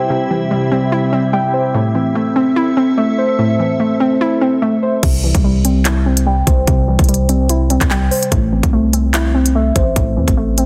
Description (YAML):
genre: hip hop, drill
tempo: 146 BPM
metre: 4/4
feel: half-time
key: unclear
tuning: A4 = 440 Hz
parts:
  - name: hollow square pluck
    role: accompaniment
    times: 0.0-10.7 s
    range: A2 to E4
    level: -20 LUFS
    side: equal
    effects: chorus, low-pass filter
  - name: glassy FM pad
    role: sustained chords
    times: 0.0-5.0 s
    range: C4 to E5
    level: -26 LUFS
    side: equal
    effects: ensemble chorus, built-in reverb, phaser
  - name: muted felt-like synth keys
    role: arpeggios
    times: 0.0-10.7 s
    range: C3 to G5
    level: -20 LUFS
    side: equal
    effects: chorus, low-pass filter, digital delay
  - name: hard-hitting 808-style bass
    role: bass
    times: 5.0-10.7 s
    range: A1 to E2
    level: -18 LUFS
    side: equal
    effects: none
  - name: drill drum kit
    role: drums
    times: 5.0-10.7 s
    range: crash cymbal, handclaps, hi-hat, kick drum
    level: -19 LUFS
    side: equal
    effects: none
room: moderate lush hall reverb, RT60 1.6 s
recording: dense, heavily limited modern master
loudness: -15 LUFS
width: mono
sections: 0.0-5.0 A section; 5.0-10.7 B section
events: filter sweep 5.0-10.7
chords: 0.0 C; 1.7 Am; 5.0 C; 8.3 Am